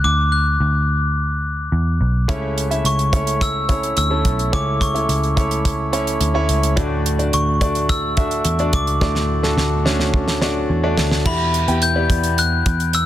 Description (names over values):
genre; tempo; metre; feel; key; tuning
piano-driven pop; 107 BPM; 4/4; straight; D major; A4 = 439 Hz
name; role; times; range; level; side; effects
glockenspiel with brass mallets; melody; 0.0-13.1 s; B5 to G6; -22 LUFS; left 2 dB; none
vintage muted picked electric bass; bass; 0.0-13.1 s; B1 to E2; -20 LUFS; equal; none
clear concert grand piano; accompaniment; 2.3-13.1 s; A2 to G5; -22 LUFS; equal; none
damped 70s drum kit; drums; 2.3-13.1 s; crash cymbal, hi-hat, kick drum, snare drum; -21 LUFS; right 1 dB; none
room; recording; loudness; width
light reverb, small room ambience; dense, heavily limited modern master; -16 LUFS; side -12 dB against mid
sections
0.0-11.3 A section; 11.3-13.1 B section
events
drum fill 9.0-11.3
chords
0.0 D; 2.3 A; 6.8 D; 11.3 Em